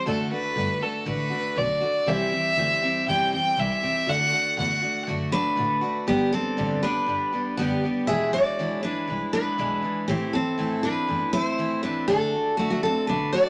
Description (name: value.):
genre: honky-tonk and classic country.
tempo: 120 BPM.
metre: 4/4.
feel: straight.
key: G major.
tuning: A4 = 439 Hz.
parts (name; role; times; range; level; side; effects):
clear fiddle; second line; 0.0-5.0 s; A4 to G5; -26 LUFS; equal; none.
honky-tonk upright piano; accompaniment; 0.0-6.0 s; F#4 to E5; -40 LUFS; equal; none.
picked steel-string acoustic guitar; accompaniment; 0.0-13.5 s; E2 to G4; -31 LUFS; equal; none.
rich double bass; bass; 0.1-13.2 s; E1 to A2; -37 LUFS; equal; none.
picked steel-string acoustic guitar; melody; 5.3-13.5 s; A3 to E5; -26 LUFS; equal; none.
room: moderate studio reverb, RT60 0.8 s.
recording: none.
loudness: -25 LUFS.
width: mono.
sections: 0.0-6.1 A section; 6.1-13.5 B section.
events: fiddle solo 0.0-6.1.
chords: 0.1 D; 2.1 C; 4.1 D; 6.1 G; 8.1 E7; 10.1 Am; 12.1 D.